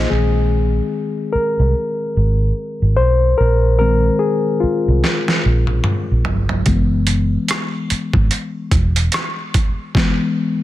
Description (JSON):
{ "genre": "R&B, neo-soul", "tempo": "73 BPM", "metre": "4/4", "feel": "swing 60% on 16ths", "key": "unclear", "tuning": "A4 = 440 Hz", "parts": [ { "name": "reed electric piano", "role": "accompaniment", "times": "0.0-10.6 s", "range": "Eb3 to Eb5", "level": "-19 LUFS", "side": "left 3 dB", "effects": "none" }, { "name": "vintage muted fingered electric bass", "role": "bass", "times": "0.0-9.1 s", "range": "Fb1 to C2", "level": "-16 LUFS", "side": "right 1 dB", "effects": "none" }, { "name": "boom bap sampler-style drum kit", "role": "drums", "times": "5.0-10.2 s", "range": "hi-hat, kick drum, rim click, snare drum, toms", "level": "-18 LUFS", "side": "right 1 dB", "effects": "overdrive" } ], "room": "digital ambience", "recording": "dense, heavily limited modern master", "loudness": "-15 LUFS", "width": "side -15 dB against mid", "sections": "0.1-10.6 A section", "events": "reed electric piano solo 0.1-10.6; drum fill 5.0-6.7", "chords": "0.1 Bb9sus4; 6.7 Gb9sus4" }